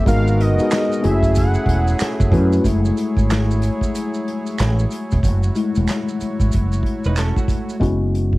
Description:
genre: R&B, neo-soul.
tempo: 93 BPM.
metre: 4/4.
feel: swing 63% on 16ths.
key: F# dorian.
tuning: A4 = 440 Hz.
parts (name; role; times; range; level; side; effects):
fat analog lead; melody; 0.0-2.3 s; D#5 to F#5; -25 LUFS; right 1 dB; cassette tape.
tine electric piano; accompaniment; 0.0-8.4 s; G#3 to B4; -22 LUFS; left 2 dB; cassette tape.
accordion; sustained chords; 0.0-7.8 s; F#3 to C#5; -29 LUFS; right 2 dB; light tremolo tuning, cassette tape.
mellow fretless electric bass; bass; 0.0-8.4 s; E1 to F#2; -17 LUFS; right 1 dB; none.
unplugged drum kit; drums; 0.1-8.4 s; handclaps, hi-hat, kick drum, snare drum; -22 LUFS; equal; cassette tape.
maracas and finger snaps; percussion; 0.1-7.8 s; none; -34 LUFS; right 6 dB; none.
vintage hollow-body jazz guitar; second line; 7.1-7.8 s; A3 to B4; -27 LUFS; right 4 dB; cassette tape.
room: small room ambience.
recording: home recording on cassette.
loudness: -16 LUFS.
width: side -19 dB against mid.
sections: 0.0-2.6 A section; 2.6-7.8 B section.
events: tine electric piano solo 2.6-7.8.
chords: 0.1 G#m9; 1.0 F#m9; 7.8 F#9sus4.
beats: | 0.07 0.71 1.36 2.00 | 2.65 3.29 3.94 4.59 | 5.23 5.88 6.52 7.17 | 7.81.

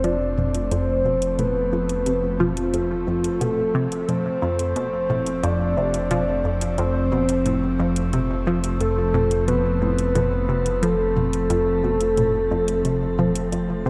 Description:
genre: ambient, sequencer-driven space music.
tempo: 89 BPM.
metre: 4/4.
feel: straight.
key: F lydian.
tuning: A4 = 440 Hz.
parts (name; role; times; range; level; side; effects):
soft octave-layered synth lead; melody; 0.0-13.9 s; F4 to D5; -26 LUFS; equal; chorus, shimmer reverb, delay.
evolving wavetable pad; sustained chords; 0.0-13.9 s; F3 to A4; -29 LUFS; equal; chorus, built-in reverb, shimmer reverb.
tight sequenced synth; riff; 0.0-13.9 s; F2 to F3; -28 LUFS; equal; chorus, phaser, shimmer reverb, delay.
round analog bass; bass; 0.0-13.9 s; F1; -30 LUFS; equal; none.
soft vintage rhythm box; percussion; 0.0-13.7 s; hi-hat, toms; -31 LUFS; equal; none.
room: moderate plate reverb, RT60 3.0 s.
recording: none.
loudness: -22 LUFS.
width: mono.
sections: 0.0-13.9 A section.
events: none.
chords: 0.0 F.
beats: 0.04 0.72 | 1.39 2.06 2.74 3.41 | 4.09 4.76 5.43 6.11 | 6.78 7.46 8.13 8.80 | 9.48 10.15 10.83 11.50 | 12.18 12.85 13.52.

